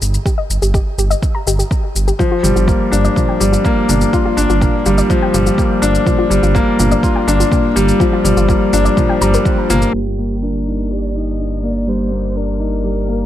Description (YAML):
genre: piano and strings electronica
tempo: 124 BPM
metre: 4/4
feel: straight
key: G minor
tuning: A4 = 440 Hz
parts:
  - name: dark detuned saw bass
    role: bass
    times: 0.0-13.3 s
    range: G1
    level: -17 LUFS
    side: right 1 dB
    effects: sidechain pumping
  - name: electronic shaker and toms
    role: drums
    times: 0.0-9.9 s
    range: none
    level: -23 LUFS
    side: equal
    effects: overdrive, low-pass filter on perc, low-pass filter on toms
  - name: soft round pluck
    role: arpeggios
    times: 0.3-9.7 s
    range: F4 to Bb5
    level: -23 LUFS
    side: left 3 dB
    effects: chorus, cassette tape, sidechain pumping, tape echo, shimmer reverb
  - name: electronic kick drum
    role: drums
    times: 0.3-9.6 s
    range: none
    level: -17 LUFS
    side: right 1 dB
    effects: overdrive
  - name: warm concert grand piano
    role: riff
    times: 2.2-13.3 s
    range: F3 to G4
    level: -15 LUFS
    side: left 1 dB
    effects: tape echo, shimmer reverb
  - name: warm violin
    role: melody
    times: 9.9-13.3 s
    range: G4 to Eb5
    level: -28 LUFS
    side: left 1 dB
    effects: tape echo, shimmer reverb
room: light reverb, digital ambience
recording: low-pass filter, faint mains hum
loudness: -12 LUFS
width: side -12 dB against mid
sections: 0.0-9.9 A section; 9.9-13.3 B section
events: filter sweep 9.9-13.3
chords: 0.0 N.C.; 2.2 Gm7; 9.9 Ebmaj7/G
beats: | 0.26 0.74 1.23 1.71 | 2.20 2.68 3.16 3.65 | 4.13 4.62 5.10 5.58 | 6.07 6.55 7.04 7.52 | 8.00 8.49 8.97 9.45 | 9.94 10.42 10.91 11.39 | 11.87 12.36 12.84